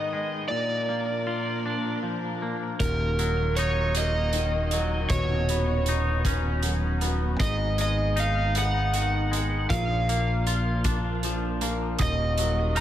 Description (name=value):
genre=post-rock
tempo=52 BPM (dotted quarters)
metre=6/8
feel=straight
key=Eb minor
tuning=A4 = 437 Hz
part: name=overdriven slide guitar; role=melody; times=0.0-12.8 s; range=Bb4 to Bb5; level=-29 LUFS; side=right 2 dB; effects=digital delay
part: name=rich studio string section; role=sustained chords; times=0.0-12.8 s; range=Ab2 to Cb5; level=-36 LUFS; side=right 1 dB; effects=none
part: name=twangy electric guitar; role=arpeggios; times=0.0-12.8 s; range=Eb2 to F4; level=-30 LUFS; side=left 2 dB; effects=wide subtle chorus, digital delay
part: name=fingered electric bass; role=bass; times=2.8-12.8 s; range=Eb1 to Bb1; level=-26 LUFS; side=equal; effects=none
part: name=loose indie drum kit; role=drums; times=2.8-12.8 s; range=hi-hat, kick drum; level=-30 LUFS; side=equal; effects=none
part: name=glockenspiel with soft plastic mallets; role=arpeggios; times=12.0-12.8 s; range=Eb6 to F6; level=-35 LUFS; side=right 6 dB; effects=digital delay
room=light reverb, small room reverb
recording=none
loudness=-23 LUFS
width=side -11 dB against mid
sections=0.0-2.8 A section; 2.8-12.8 A section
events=none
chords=0.0 Abm; 0.5 Bb; 2.8 Ebmadd9; 5.1 Badd9/D#; 7.4 Abm; 9.7 Bb; 12.0 Ebmadd9